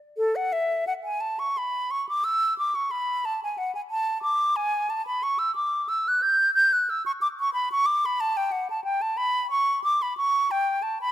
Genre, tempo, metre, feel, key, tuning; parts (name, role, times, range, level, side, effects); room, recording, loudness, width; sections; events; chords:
classical, baroque-style fantasia for unaccompanied flute; 60 BPM (dotted quarters); 6/8; rubato; A major; A4 = 441 Hz
mellow silver concert flute; solo; 0.2-11.1 s; A4 to G6; -22 LUFS; equal
light reverb; close, detailed microphones; -22 LUFS; side -12 dB against mid
0.2-11.1 A section